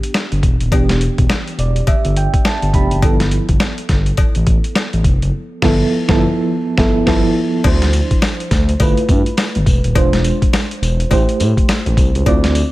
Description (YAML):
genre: R&B, new jack swing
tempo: 104 BPM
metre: 4/4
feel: swing 61% on 16ths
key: unclear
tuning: A4 = 440 Hz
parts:
  - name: mellow FM electric piano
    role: accompaniment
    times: 0.0-12.7 s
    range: E3 to B5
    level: -19 LUFS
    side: right 2 dB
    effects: chorus, tremolo
  - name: boom bap sampler-style drum kit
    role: drums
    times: 0.0-12.7 s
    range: crash cymbal, hi-hat, kick drum, snare drum, tambourine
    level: -16 LUFS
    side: equal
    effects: none
  - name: cowbell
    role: percussion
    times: 0.1-12.4 s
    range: none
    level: -28 LUFS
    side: left 8 dB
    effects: none
  - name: smooth gliding synth bass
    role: bass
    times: 0.3-12.6 s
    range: D#1 to A2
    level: -16 LUFS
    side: equal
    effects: none
room: light reverb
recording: none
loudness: -12 LUFS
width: side -17 dB against mid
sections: 0.0-7.6 A section; 7.6-12.7 B section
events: FM electric piano fill 1.3-3.0; drums muted 5.3-7.6; band accent 5.3-7.6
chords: 0.0 Em7; 3.0 G13; 7.6 Dm9; 8.8 G13; 10.0 E7b9b13; 11.1 Am7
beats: 0.14 | 0.72 1.30 1.88 2.45 | 3.03 3.61 4.18 4.76 | 5.34 5.91 6.49 7.07 | 7.64 8.22 8.80 9.38 | 9.95 10.53 11.11 11.68 | 12.26